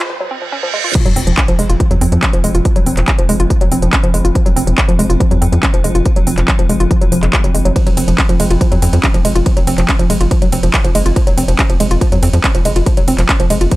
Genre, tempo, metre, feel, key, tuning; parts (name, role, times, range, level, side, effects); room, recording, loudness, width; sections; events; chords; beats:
driving peak-time techno; 141 BPM; 4/4; straight; F phrygian; A4 = 439 Hz
woody wave-folded pluck; riff; 0.0-13.8 s; F3 to F4; -18 LUFS; equal; chorus, cassette tape, sidechain pumping, analog delay
metallic inharmonic drone; drone; 0.0-13.8 s; F3 to C4; -23 LUFS; right 1 dB; chorus, built-in reverb, phaser, sidechain pumping
riser, reverse cymbal and sub drop; sound effects; 0.0-2.7 s; -21 LUFS; right 3 dB
electronic kick drum; drums; 0.9-13.8 s; -14 LUFS; equal; high-pass filter on kick, small room ambience
techno drum kit; drums; 0.9-13.8 s; crash cymbal, handclaps, hi-hat, ride cymbal; -19 LUFS; equal; high-pass filter on snare, small room ambience, sidechain pumping on hats, high-pass filter on hats, sidechain pumping on cymbals, high-pass filter on cymbals
tight sequencer bass; bass; 1.1-13.7 s; F1 to F2; -15 LUFS; equal; sidechain pumping
digital ambience; dry, gritty hardware recording, high-pass filter; -10 LUFS; side -18 dB against mid
0.9-13.8 A section
break 0.1-0.9; reverse cymbal 0.1-0.9; drop 0.9-13.8; impact 0.9-2.7
0.0 F5
0.10 0.52 | 0.95 1.38 1.80 2.23 | 2.65 3.08 3.50 3.93 | 4.35 4.78 5.21 5.63 | 6.06 6.48 6.91 7.33 | 7.76 8.18 8.61 9.04 | 9.46 9.89 10.31 10.74 | 11.16 11.59 12.01 12.44 | 12.87 13.29 13.72